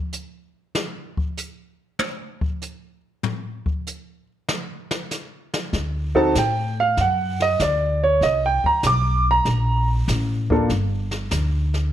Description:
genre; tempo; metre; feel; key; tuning
jazz piano trio; 96 BPM; 4/4; swing 68% on 8ths; G minor; A4 = 442 Hz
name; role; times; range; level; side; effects
jazz brush drum kit; drums; 0.1-11.9 s; brushed snare drum, hi-hat, kick drum, snare drum, toms; -27 LUFS; left 1 dB; none
upright bass; bass; 5.7-11.9 s; G1 to A2; -22 LUFS; equal; none
warm grand piano; melody; 6.1-10.7 s; Bb3 to D6; -19 LUFS; right 2 dB; none
room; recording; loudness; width
light reverb; none; -20 LUFS; side -11 dB against mid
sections
0.0-11.9 A section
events
grand piano solo 0.0-11.9; drum solo 0.0-5.7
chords
0.0 N.C.; 5.7 D; 8.2 Bbmaj9; 10.7 G5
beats
0.13 | 0.75 1.37 1.99 2.62 | 3.24 3.86 4.48 5.11 | 5.73 6.35 6.97 7.59 | 8.22 8.84 9.46 10.08 | 10.70 11.32

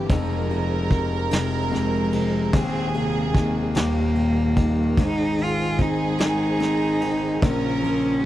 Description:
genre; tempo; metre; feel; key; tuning
six-eight pop ballad; 49 BPM (dotted quarters); 6/8; straight; Ab major; A4 = 440 Hz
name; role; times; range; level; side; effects
warm studio violin section; second line; 0.0-8.2 s; G4 to Bb4; -30 LUFS; right 3 dB; none
warm concert grand piano; accompaniment; 0.0-8.3 s; Eb1 to C4; -24 LUFS; left 3 dB; none
mellow tonewheel organ; sustained chords; 0.0-8.3 s; Db3 to C5; -29 LUFS; right 3 dB; chorus vibrato, slow rotary speaker
vintage brush drum kit; drums; 0.1-8.0 s; kick drum, ride cymbal, snare drum; -25 LUFS; equal; none
warm cello; melody; 1.7-8.3 s; Ab3 to F4; -24 LUFS; right 1 dB; none
room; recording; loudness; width
little or no reverb; dry, close 1970s-style studio recording; -20 LUFS; side -13 dB against mid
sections
0.0-8.3 A section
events
none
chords
0.1 Fm; 2.5 Ab/Eb; 3.8 Eb; 5.0 Ab; 7.4 Bbmadd9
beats
| 0.09 1.31 | 2.54 3.76 | 4.98 6.21 | 7.43

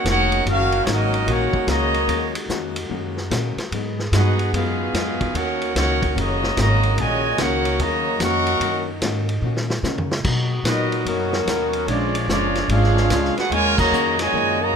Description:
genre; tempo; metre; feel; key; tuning
jazz, big band swing; 147 BPM; 4/4; swing 65% on 8ths; Eb minor; A4 = 440 Hz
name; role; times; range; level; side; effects
clear trumpet section; melody; 0.0-14.8 s; Ab3 to Db6; -22 LUFS; right 1 dB; none
clear trombone section; second line; 0.0-14.8 s; Bb2 to A#4; -24 LUFS; right 1 dB; none
bright saxophone section; sustained chords; 0.0-14.8 s; Bb2 to Ab4; -32 LUFS; left 2 dB; none
upright bass; bass; 0.0-14.8 s; F1 to Db3; -23 LUFS; equal; none
hollow-body jazz guitar; accompaniment; 0.1-14.6 s; Ab2 to Gb4; -29 LUFS; left 8 dB; none
vintage drum kit; drums; 0.1-14.3 s; crash cymbal, hi-hat, kick drum, ride cymbal, snare drum, toms; -27 LUFS; equal; none
room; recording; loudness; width
light reverb; minimal, uncompressed stereo recording; -18 LUFS; side -7 dB against mid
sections
0.0-14.8 A section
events
drum fill 9.4-10.2; band accent 13.7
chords
0.0 Ebm7; 3.7 Abm7; 5.3 Ebm7; 10.2 Bmaj7; 11.9 Bb7#9; 13.5 Ebm7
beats
0.05 | 0.45 0.86 1.27 1.68 | 2.08 2.49 2.90 3.31 | 3.72 4.12 4.53 4.94 | 5.35 5.76 6.17 6.57 | 6.98 7.39 7.80 8.21 | 8.61 9.02 9.43 9.84 | 10.25 10.65 11.06 11.47 | 11.88 12.29 12.70 13.11 | 13.52 13.93 14.33 14.74

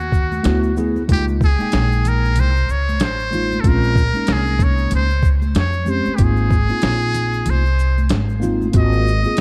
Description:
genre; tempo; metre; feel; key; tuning
hip hop, jazz-hop; 94 BPM; 4/4; swing 60% on 16ths; Ab major; A4 = 441 Hz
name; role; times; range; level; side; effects
trumpet with metal mute; melody; 0.0-9.4 s; Gb4 to Eb5; -25 LUFS; equal; tape echo
upright bass; bass; 0.0-9.4 s; Ab1 to F2; -21 LUFS; equal; none
tube shaker and congas; percussion; 0.0-9.4 s; none; -33 LUFS; equal; none
boom bap sampler-style drum kit; drums; 0.1-9.4 s; hi-hat, kick drum, shaker, snare drum; -21 LUFS; equal; none
mellow tine electric piano; accompaniment; 0.4-9.4 s; Ab3 to G5; -24 LUFS; equal; phaser
room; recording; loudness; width
small room ambience; dark, warm production; -17 LUFS; mono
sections
0.0-9.4 A section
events
none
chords
0.4 D6; 1.1 Db6; 3.6 Bbm9; 6.2 Ab6; 8.7 Ab13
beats
0.45 | 1.09 1.72 2.36 3.00 | 3.64 4.28 4.92 5.55 | 6.19 6.83 7.47 8.11 | 8.74 9.38

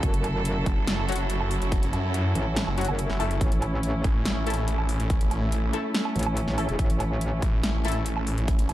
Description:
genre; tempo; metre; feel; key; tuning
heavy wobble dubstep; 142 BPM; 4/4; half-time; unclear; A4 = 440 Hz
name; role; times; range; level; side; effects
warm studio string section; sustained chords; 0.0-8.7 s; F#3 to A4; -31 LUFS; right 1 dB; sidechain pumping
metallic wobble bass; bass; 0.0-7.4 s; E1 to A1; -26 LUFS; equal; chorus, overdrive
big-room dance drum kit; drums; 0.0-8.7 s; hi-hat, snare drum, woodblock; -31 LUFS; right 1 dB; none
electronic kick drum; drums; 0.0-8.6 s; none; -25 LUFS; equal; overdrive
snarling distorted saw bass; bass; 0.7-8.7 s; F#1 to F#2; -26 LUFS; equal; distortion, overdrive
orchestra-hit-like synth stab; stabs; 1.1-7.9 s; F#3 to A4; -33 LUFS; left 3 dB; built-in reverb, digital delay
room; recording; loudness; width
light reverb; dark, warm production; -23 LUFS; side -14 dB against mid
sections
0.0-8.7 A section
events
none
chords
0.0 F#m7; 3.4 A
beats
| 0.03 0.45 0.88 1.30 | 1.72 2.14 2.56 2.99 | 3.41 3.83 4.25 4.68 | 5.10 5.52 5.95 6.37 | 6.79 7.21 7.63 8.06 | 8.48

